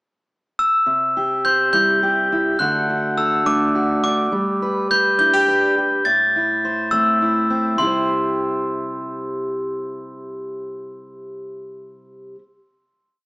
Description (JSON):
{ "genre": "indie folk with a building arrangement", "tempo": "69 BPM (dotted quarters)", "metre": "6/8", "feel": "straight", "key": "C major", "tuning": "A4 = 440 Hz", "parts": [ { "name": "glockenspiel with brass mallets", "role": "melody", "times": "0.6-12.3 s", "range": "C6 to A6", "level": "-18 LUFS", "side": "equal", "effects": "none" }, { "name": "fingerpicked steel-string acoustic guitar", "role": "accompaniment", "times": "0.9-12.4 s", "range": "A2 to C5", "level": "-22 LUFS", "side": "equal", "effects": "none" } ], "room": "moderate large studio reverb, RT60 0.9 s", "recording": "small speaker sound", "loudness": "-16 LUFS", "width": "side -27 dB against mid", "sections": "0.0-0.9 pickup bar; 0.9-7.8 verse; 7.8-11.2 final chord", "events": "none", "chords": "0.0 N.C.; 0.9 C; 2.6 D; 4.3 G; 6.1 Am; 7.8 C" }